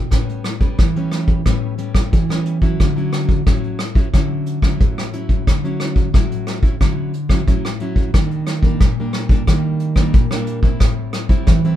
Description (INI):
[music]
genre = samba and choro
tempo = 90 BPM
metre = 4/4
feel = straight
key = D major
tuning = A4 = 440 Hz
[part]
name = nylon-string guitar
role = accompaniment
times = 0.0-11.8 s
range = A2 to E4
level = -21 LUFS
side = equal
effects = none
[part]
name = vintage brush drum kit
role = drums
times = 0.1-11.8 s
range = hi-hat, kick drum, rim click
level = -16 LUFS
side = equal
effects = none
[sound]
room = light reverb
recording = band playing live in one room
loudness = -15 LUFS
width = side -12 dB against mid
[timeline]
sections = 0.0-8.1 A section; 8.1-11.8 B section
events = none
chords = 0.1 A9; 2.8 Dmaj9; 8.1 Ebmaj7; 10.8 Am7